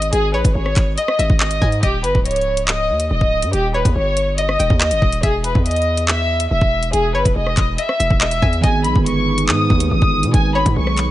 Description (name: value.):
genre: hip hop, drill.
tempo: 141 BPM.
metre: 4/4.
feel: half-time.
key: G# harmonic minor.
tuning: A4 = 440 Hz.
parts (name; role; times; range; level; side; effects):
warm studio violin section; melody; 0.0-11.1 s; G4 to D#6; -19 LUFS; left 1 dB; low-pass filter.
distorted 808-style bass; bass; 0.0-11.1 s; C#1 to B2; -20 LUFS; equal; distortion.
drill drum kit; drums; 0.0-11.1 s; handclaps, hi-hat, kick drum, rim click; -18 LUFS; equal; overdrive.
string-like resonator pluck; second line; 0.3-11.1 s; C#5 to G#5; -27 LUFS; left 2 dB; chorus, tape echo.
mellow tine electric piano; accompaniment; 8.6-11.1 s; D#3 to G#4; -22 LUFS; right 5 dB; low-pass filter.
glass harmonica; sustained chords; 8.6-11.1 s; G#3 to B4; -24 LUFS; equal; none.
room: little or no reverb.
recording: nothing above 10.9 kHz.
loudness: -14 LUFS.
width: side -14 dB against mid.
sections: 0.0-8.6 A section; 8.6-11.1 B section.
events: break 0.0-3.5.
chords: 0.0 G#5; 1.8 D#; 5.2 Emaj7(no3); 8.6 G#m.